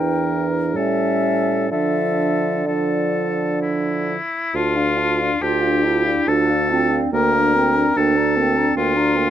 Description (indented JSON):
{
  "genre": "classical, slow romantic movement for wind quintet",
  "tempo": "62-75 BPM",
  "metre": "3/4",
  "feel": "rubato",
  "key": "D minor",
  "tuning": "A4 = 442 Hz",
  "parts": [
    { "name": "mellow concert flute", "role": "melody", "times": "0.0-9.3 s", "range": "D5 to Bb5", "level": "-28 LUFS", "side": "left 7 dB", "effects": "none" },
    { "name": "clear oboe", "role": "second line", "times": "0.0-9.3 s", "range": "E4 to Bb4", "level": "-21 LUFS", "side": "left 3 dB", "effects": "none" },
    { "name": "mellow French horn", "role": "accompaniment", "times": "0.0-9.3 s", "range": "E3 to F4", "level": "-24 LUFS", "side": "left 1 dB", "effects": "none" },
    { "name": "mellow clarinet", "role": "accompaniment", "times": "0.0-9.3 s", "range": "Bb3 to F4", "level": "-24 LUFS", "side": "right 7 dB", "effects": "none" },
    { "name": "mellow bassoon", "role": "bass", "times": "0.0-9.3 s", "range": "D2 to D3", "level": "-22 LUFS", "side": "right 2 dB", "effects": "none" }
  ],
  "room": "light reverb",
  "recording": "close, detailed microphones",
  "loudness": "-16 LUFS",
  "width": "side -10 dB against mid",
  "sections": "0.0-4.5 A section; 4.5-9.3 A section",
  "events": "none",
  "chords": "0.0 Em7b5; 0.8 A7; 1.7 Dm; 7.1 Gm/D"
}